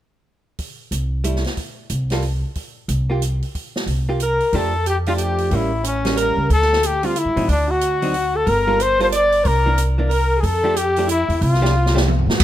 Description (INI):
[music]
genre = jazz, small-group swing and bop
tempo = 183 BPM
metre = 3/4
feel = swing 62% on 8ths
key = F major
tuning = A4 = 440 Hz
[part]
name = open jazz drum kit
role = drums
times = 0.6-12.4 s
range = crash cymbal, hi-hat, kick drum, snare drum, toms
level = -25 LUFS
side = right 1 dB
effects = none
[part]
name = upright bass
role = bass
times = 0.9-12.4 s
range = G1 to A2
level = -20 LUFS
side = equal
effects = none
[part]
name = vintage hollow-body jazz guitar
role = accompaniment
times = 1.2-12.1 s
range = D3 to A4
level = -26 LUFS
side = right 2 dB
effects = none
[part]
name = breathy trumpet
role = melody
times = 4.2-12.4 s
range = C#4 to D5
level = -20 LUFS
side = left 3 dB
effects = none
[part]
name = clear alto saxophone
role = second line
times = 4.2-12.4 s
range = C#4 to D5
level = -24 LUFS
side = right 3 dB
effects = none
[sound]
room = light reverb, studio reverb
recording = rough home demo mix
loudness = -16 LUFS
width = side -12 dB against mid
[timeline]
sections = 0.6-4.5 A section; 4.5-12.4 B section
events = drum fill 11.7-12.4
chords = 0.6 C6; 1.6 N.C.; 2.6 C7(no3); 4.5 F69; 5.5 A7b9; 6.5 Dm11; 7.5 D; 8.5 Gm9; 9.5 C9; 10.4 F69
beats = | 0.59 0.92 1.25 | 1.58 1.91 2.23 | 2.56 2.89 3.22 | 3.55 3.88 4.21 | 4.53 4.86 5.19 | 5.52 5.85 6.17 | 6.50 6.83 7.16 | 7.49 7.81 8.14 | 8.47 8.80 9.12 | 9.45 9.78 10.11 | 10.43 10.76 11.09 | 11.41 11.74 12.07 | 12.39